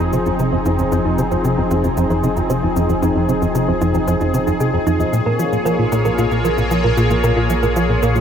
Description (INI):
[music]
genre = ambient, sequencer-driven space music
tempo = 114 BPM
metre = 4/4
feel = straight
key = F minor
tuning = A4 = 443 Hz
[part]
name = sweeping resonant pad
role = sustained chords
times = 0.0-8.2 s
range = F3 to Db5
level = -19 LUFS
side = left 1 dB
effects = chorus
[part]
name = tight sequencer bass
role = riff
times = 0.0-8.2 s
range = F2 to F3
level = -18 LUFS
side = equal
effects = analog chorus, analog delay
[part]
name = warm sub bass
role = bass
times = 0.0-8.2 s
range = F1 to Bb1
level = -26 LUFS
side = equal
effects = none
[part]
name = cabasa and woodblock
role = percussion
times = 0.0-8.2 s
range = none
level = -38 LUFS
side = left 1 dB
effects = analog delay
[part]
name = thumb-piano-like synth pluck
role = arpeggios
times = 0.1-8.2 s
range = Eb4 to Eb5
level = -24 LUFS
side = moving between left 1 dB and right 6 dB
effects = chorus, auto-pan, analog delay
[sound]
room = wet huge ambient reverb, RT60 7.0 s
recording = none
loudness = -15 LUFS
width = side -8 dB against mid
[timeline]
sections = 0.0-8.2 A section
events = filter sweep on synth arpeggio sound 0.0-8.2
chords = 0.0 Fm7; 5.1 Bbm7